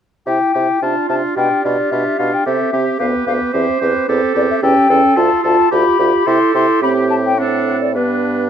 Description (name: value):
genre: quick classical-period movement for wind quintet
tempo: 109 BPM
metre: 2/4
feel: straight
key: C major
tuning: A4 = 440 Hz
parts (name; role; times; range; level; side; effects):
- mellow hollow silver concert flute; melody; 0.3-8.5 s; B4 to C6; -18 LUFS; left 6 dB; none
- clear oboe; second line; 0.3-8.5 s; D4 to A4; -22 LUFS; left 2 dB; none
- mellow French horn; accompaniment; 0.3-8.5 s; B3 to F4; -19 LUFS; right 2 dB; none
- clear bassoon; bass; 0.3-8.5 s; D2 to C3; -20 LUFS; right 2 dB; none
- clear clarinet; accompaniment; 0.8-8.4 s; F4 to C5; -20 LUFS; right 8 dB; none
room: light reverb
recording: dark, warm production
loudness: -13 LUFS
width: side -8 dB against mid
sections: 0.3-8.5 A section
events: none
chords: 0.3 C; 0.8 Dm7/C; 1.4 G7/B; 2.5 C; 3.0 G/D; 3.5 C/E; 4.6 A7/E; 5.2 Dm; 5.7 G7/D; 6.3 C; 6.8 Am7; 7.4 D7/A; 7.9 G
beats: | 0.26 0.82 | 1.37 1.91 | 2.46 3.00 | 3.54 4.08 | 4.62 5.17 | 5.72 6.27 | 6.82 7.38 | 7.95